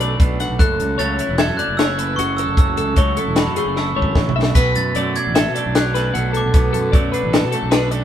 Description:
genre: math rock and midwest emo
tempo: 152 BPM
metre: 5/4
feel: straight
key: unclear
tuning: A4 = 442 Hz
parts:
  - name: twelve-string electric guitar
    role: accompaniment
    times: 0.0-8.0 s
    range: F#2 to A4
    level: -24 LUFS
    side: right 4 dB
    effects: none
  - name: twelve-string electric guitar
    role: arpeggios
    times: 0.0-8.0 s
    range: F#4 to F#5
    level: -23 LUFS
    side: left 4 dB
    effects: none
  - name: fuzz fingered electric bass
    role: bass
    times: 0.0-8.0 s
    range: E1 to B2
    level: -23 LUFS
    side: right 1 dB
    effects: overdrive
  - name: compact cocktail drum kit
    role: drums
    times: 0.0-8.0 s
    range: hi-hat, kick drum, snare drum, splash cymbal, toms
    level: -17 LUFS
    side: equal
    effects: none
  - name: glockenspiel with hard plastic mallets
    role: melody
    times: 0.6-7.3 s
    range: B5 to B6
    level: -24 LUFS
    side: equal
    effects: none
room: moderate studio reverb, RT60 0.6 s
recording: band playing live in one room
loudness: -15 LUFS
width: side -10 dB against mid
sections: 0.0-8.0 A section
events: drum fill 3.8-4.6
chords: 0.0 Bm7; 0.6 F#m7; 4.6 Bm7

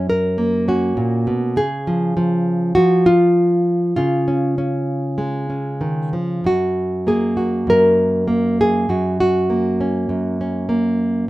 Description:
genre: folk, solo fingerstyle acoustic guitar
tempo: 99 BPM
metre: 4/4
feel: rubato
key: F# major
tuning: A4 = 439 Hz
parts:
  - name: nylon-string guitar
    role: solo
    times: 0.0-11.3 s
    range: F#2 to C#5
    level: -16 LUFS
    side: equal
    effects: none
room: moderate studio reverb, RT60 0.6 s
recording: minimal, uncompressed stereo recording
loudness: -16 LUFS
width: side -17 dB against mid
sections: 0.0-6.4 A section; 6.4-11.3 B section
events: none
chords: 0.0 F#; 1.6 C#; 6.4 F#

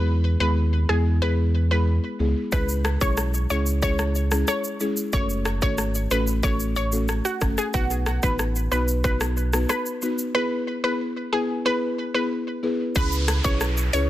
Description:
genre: dancehall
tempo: 92 BPM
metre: 4/4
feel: straight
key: C# minor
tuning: A4 = 442 Hz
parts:
  - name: analog pluck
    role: melody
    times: 0.0-14.0 s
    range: F#4 to C#5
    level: -27 LUFS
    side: equal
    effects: chorus, phaser, digital delay
  - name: buzzing marimba with soft mallets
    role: accompaniment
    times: 0.0-14.1 s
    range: G#3 to B4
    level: -27 LUFS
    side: left 2 dB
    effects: none
  - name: sub bass with octave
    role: bass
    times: 0.0-14.1 s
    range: F#1 to E2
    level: -23 LUFS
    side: equal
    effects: none
  - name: island pop drum kit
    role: drums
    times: 2.5-14.1 s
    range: hi-hat, kick drum, rim click, shaker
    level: -26 LUFS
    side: equal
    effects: none
  - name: downlifter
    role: sound effects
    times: 13.0-14.1 s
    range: none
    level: -31 LUFS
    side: right 1 dB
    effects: none
room: digital ambience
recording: dense, heavily limited modern master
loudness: -21 LUFS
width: side -14 dB against mid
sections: 0.0-13.0 A section; 13.0-14.1 B section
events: none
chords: 0.0 E; 2.5 C#m; 5.1 F#m; 7.7 B; 10.3 E; 13.0 C#m7

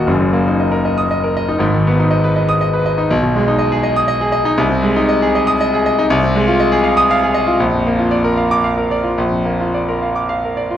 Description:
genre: classical, virtuoso piano study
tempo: 107-122 BPM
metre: 3/4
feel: rubato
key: unclear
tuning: A4 = 439 Hz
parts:
  - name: clear concert grand piano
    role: solo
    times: 0.0-10.8 s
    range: Eb1 to Eb6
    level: -13 LUFS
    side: equal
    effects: none
room: wet recital hall reverb, RT60 1.7 s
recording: worn, warbling old tape, cassette tape, warbly pitch drift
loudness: -13 LUFS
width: side -10 dB against mid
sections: 0.0-10.8 A section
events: none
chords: 0.1 Ebm/Gb; 1.6 Abm; 3.1 Abm/Cb; 4.6 Ab/C; 6.1 Fm7/C; 7.6 Bb

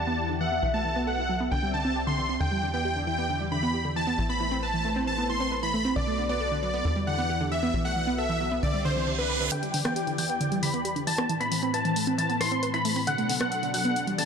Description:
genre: uplifting trance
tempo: 135 BPM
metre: 4/4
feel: straight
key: E minor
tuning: A4 = 441 Hz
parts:
  - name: supersaw chords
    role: melody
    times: 0.0-14.3 s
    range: B4 to C6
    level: -29 LUFS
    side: equal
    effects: low-pass filter, digital delay
  - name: analog string pad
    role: sustained chords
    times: 0.0-14.3 s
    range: E2 to E5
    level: -33 LUFS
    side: left 2 dB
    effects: ensemble chorus
  - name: tight sequencer bass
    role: bass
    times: 0.0-9.5 s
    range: A1 to E2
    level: -32 LUFS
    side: left 1 dB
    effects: none
  - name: wide unison pluck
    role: arpeggios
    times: 0.1-14.2 s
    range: D3 to B4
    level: -30 LUFS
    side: right 2 dB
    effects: digital delay
  - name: warm velvety synth lead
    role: second line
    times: 0.4-1.0 s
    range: E5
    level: -36 LUFS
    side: left 2 dB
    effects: chorus, digital delay
  - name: reverse cymbal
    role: sound effects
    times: 8.8-9.5 s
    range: none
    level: -34 LUFS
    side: right 6 dB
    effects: none
  - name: bright baby grand piano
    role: second line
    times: 9.5-14.3 s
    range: F#6 to C7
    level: -34 LUFS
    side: left 4 dB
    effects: low-pass filter
  - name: big-room dance drum kit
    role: drums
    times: 9.5-14.3 s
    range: hi-hat, rim click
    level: -32 LUFS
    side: left 3 dB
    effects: low-pass filter on hats, low-pass filter on snare
room: light reverb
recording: none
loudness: -24 LUFS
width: side -6 dB against mid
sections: 0.0-9.5 A section; 9.5-14.3 B section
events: filter sweep on synth arpeggio sound 0.0-9.5, 9.5-14.3; reverse cymbal 8.8-9.5; build-up 9.5-14.3; filter sweep on supersaw synth 9.5-14.3; filter sweep on grand piano 9.5-14.3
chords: 0.0 Em7; 0.6 B7sus4; 1.5 Cadd9; 2.4 Em7; 4.2 Amadd9; 6.0 Bm7; 6.8 Em7; 7.7 B7sus4; 8.6 Cadd9; 9.5 Em7; 11.3 Amadd9; 13.1 Bm7

